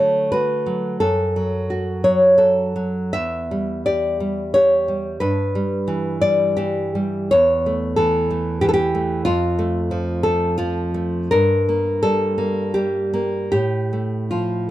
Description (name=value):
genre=romantic piece for solo classical guitar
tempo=74-94 BPM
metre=3/4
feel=rubato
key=unclear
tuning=A4 = 441 Hz
part: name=nylon-string guitar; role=solo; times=0.0-14.7 s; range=E2 to E5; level=-17 LUFS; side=equal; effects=none
room=studio ambience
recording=dry, close 1970s-style studio recording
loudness=-17 LUFS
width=side -14 dB against mid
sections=0.0-14.7 A section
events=none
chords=0.0 D; 1.0 N.C.; 3.2 Em; 5.2 Em/G; 7.3 A/E; 9.3 F; 11.3 Gmadd9; 13.5 Fadd9/A